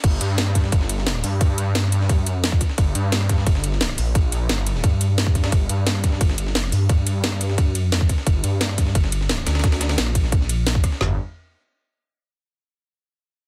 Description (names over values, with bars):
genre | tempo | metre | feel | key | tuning
dark technical drum and bass | 175 BPM | 4/4 | straight | G minor | A4 = 440 Hz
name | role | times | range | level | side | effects
detuned saw bass | bass | 0.0-11.2 s | G1 to G2 | -24 LUFS | equal | chorus, overdrive
breakbeat sampler-style drum kit | drums | 0.0-11.0 s | hi-hat, ride cymbal, snare drum | -34 LUFS | equal | high-pass filter on cymbals, high-pass filter on snare, high-pass filter on hats
drum and bass drum kit | drums | 0.0-11.1 s | kick drum, snare drum, toms | -21 LUFS | equal | none
drum and bass drum kit | drums | 0.0-10.9 s | crash cymbal, hi-hat, rim click, snare drum | -27 LUFS | equal | none
room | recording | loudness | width
little or no reverb | dense, heavily limited modern master | -20 LUFS | mono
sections
0.0-11.0 A section; 11.0-12.4 B section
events
filter sweep on detuned saw bass 0.0-11.0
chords
none